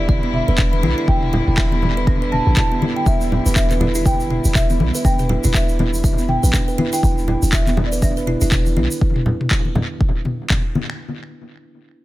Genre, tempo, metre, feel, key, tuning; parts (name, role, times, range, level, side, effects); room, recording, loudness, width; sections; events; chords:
afro house; 121 BPM; 4/4; swing 59% on 16ths; E minor; A4 = 440 Hz
marimba with soft mallets; melody; 0.0-10.5 s; D5 to A5; -26 LUFS; equal; tape echo
warm chamber string section; sustained chords; 0.0-9.0 s; D3 to E4; -28 LUFS; left 2 dB; vintage 12-bit sampler grit, sidechain pumping
warm 808-style bass; bass; 0.0-8.9 s; E1 to B1; -21 LUFS; equal; sidechain pumping
kalimba; arpeggios; 0.1-8.8 s; B3 to E5; -24 LUFS; right 2 dB; sidechain pumping, tape echo
electronic kick drum; drums; 0.1-10.6 s; -18 LUFS; equal; studio reverb
congas; percussion; 0.1-10.9 s; -24 LUFS; left 1 dB; tape echo
afro-pop drum kit; drums; 0.3-11.0 s; finger snaps, handclaps, toms; -24 LUFS; left 1 dB; studio reverb, tape echo
egg shaker; percussion; 3.1-9.0 s; -30 LUFS; right 2 dB
small room ambience; echo-heavy mix; -15 LUFS; side -16 dB against mid
0.0-11.0 A section
drop 0.0-11.0
0.0 Em7